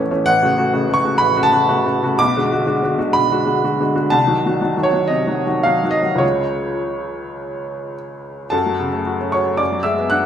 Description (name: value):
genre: classical, romantic character piece for solo piano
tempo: 101-129 BPM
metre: 4/4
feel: rubato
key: F# minor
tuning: A4 = 440 Hz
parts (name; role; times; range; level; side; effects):
- clear upright piano; solo; 0.0-10.3 s; A1 to F#6; -16 LUFS; equal; none
room: wet recital hall reverb, RT60 1.6 s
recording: minimal, uncompressed stereo recording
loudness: -15 LUFS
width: side -9 dB against mid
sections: 0.0-8.5 A section; 8.5-10.3 B section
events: none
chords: 0.3 F#m/A; 2.2 G#m7b5/B; 4.1 Cdim7; 6.2 C#; 8.5 F#m; 9.6 G#m7b5/F#